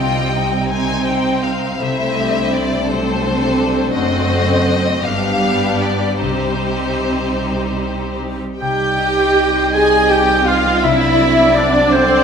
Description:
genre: classical.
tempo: 49-58 BPM (dotted quarters).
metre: 6/8.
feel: rubato.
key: C minor.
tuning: A4 = 441 Hz.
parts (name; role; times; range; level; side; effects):
rich studio violin section; melody; 0.0-12.2 s; C5 to Ab5; -22 LUFS; left 4 dB; none.
rich studio violin section; second line; 0.0-12.2 s; D4 to Ab5; -22 LUFS; left 2 dB; none.
rich studio viola section; accompaniment; 0.0-12.2 s; G3 to Ab4; -19 LUFS; right 1 dB; none.
concert harp; arpeggios; 0.0-12.2 s; F#2 to D6; -25 LUFS; left 5 dB; none.
dark studio cello section; bass; 0.0-12.2 s; F#2 to C4; -24 LUFS; right 4 dB; none.
rich symphonic double bass section; bass; 0.0-12.2 s; F#1 to C2; -24 LUFS; right 4 dB; none.
clear oboe; second line; 8.6-12.2 s; C5 to Ab5; -19 LUFS; right 2 dB; none.
mellow hollow silver concert flute; second line; 8.6-12.2 s; C5 to Ab5; -20 LUFS; left 2 dB; none.
mellow French horn section; sustained chords; 8.6-12.2 s; F#3 to Eb4; -22 LUFS; right 3 dB; none.
room: wet scoring stage reverb, RT60 1.7 s.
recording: none.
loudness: -14 LUFS.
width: side -6 dB against mid.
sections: 0.0-8.6 A section; 8.6-12.2 A section.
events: none.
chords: 0.0 Cm; 1.8 D7/C; 3.9 F#dim7; 5.0 G7; 6.2 Cm; 10.8 D7/C.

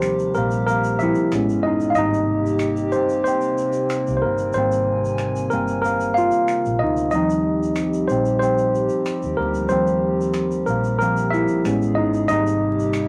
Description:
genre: R&B, neo-soul.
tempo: 93 BPM.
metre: 4/4.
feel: swing 53% on 16ths.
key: Eb major.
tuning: A4 = 440 Hz.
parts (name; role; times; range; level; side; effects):
tine electric piano; accompaniment; 0.0-13.1 s; F3 to F5; -22 LUFS; equal; none.
hollow soft pad; sustained chords; 0.0-13.1 s; A2 to Ab5; -29 LUFS; equal; chorus.
vintage muted fingered electric bass; bass; 0.0-13.1 s; Gb1 to Eb2; -30 LUFS; equal; none.
finger snaps and tube shaker; percussion; 0.0-13.1 s; none; -40 LUFS; equal; none.
room: moderate small room reverb, RT60 0.5 s.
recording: vinyl crackle.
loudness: -20 LUFS.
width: mono.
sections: 0.0-13.1 A section.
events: tine electric piano solo 0.0-13.1.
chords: 0.0 Eb69; 1.3 Amaj9; 2.0 Abmaj9; 7.1 Eb69; 11.6 Amaj9; 12.3 Abmaj9.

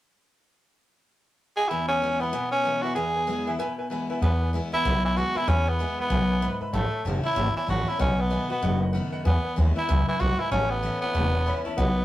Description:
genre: rockabilly.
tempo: 191 BPM.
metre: 4/4.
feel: swing 62% on 8ths.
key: E major.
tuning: A4 = 440 Hz.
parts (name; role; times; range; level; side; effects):
growling tenor saxophone; melody; 1.6-12.0 s; A3 to G#4; -26 LUFS; equal; none.
clear upright piano; accompaniment; 1.7-12.0 s; B4 to B5; -35 LUFS; equal; none.
picked steel-string acoustic guitar; accompaniment; 1.7-12.0 s; E2 to F#4; -32 LUFS; left 2 dB; none.
upright bass; bass; 4.2-12.0 s; E1 to E2; -24 LUFS; equal; none.
room: wet studio reverb, RT60 0.5 s.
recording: rough rehearsal-room recording.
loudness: -23 LUFS.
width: side -14 dB against mid.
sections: 0.4-1.7 A section; 1.7-4.2 B section; 4.2-12.0 C section.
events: none.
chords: 0.4 N.C.; 1.7 E; 6.7 A; 8.0 B7; 9.3 E; 10.5 A.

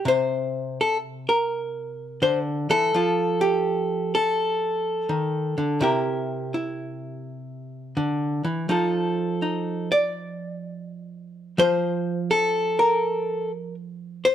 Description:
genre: solo jazz.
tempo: 83 BPM.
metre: 4/4.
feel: swing 67% on 8ths.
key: unclear.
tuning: A4 = 440 Hz.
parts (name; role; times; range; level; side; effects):
archtop guitar, miked and amplified; solo; 0.0-14.3 s; C3 to D5; -22 LUFS; equal; none.
room: light reverb.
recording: band playing live in one room.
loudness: -22 LUFS.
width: side -10 dB against mid.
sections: 0.0-14.3 A section.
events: none.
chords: 0.0 C7(no3); 2.9 F7; 5.8 C7; 8.7 F7.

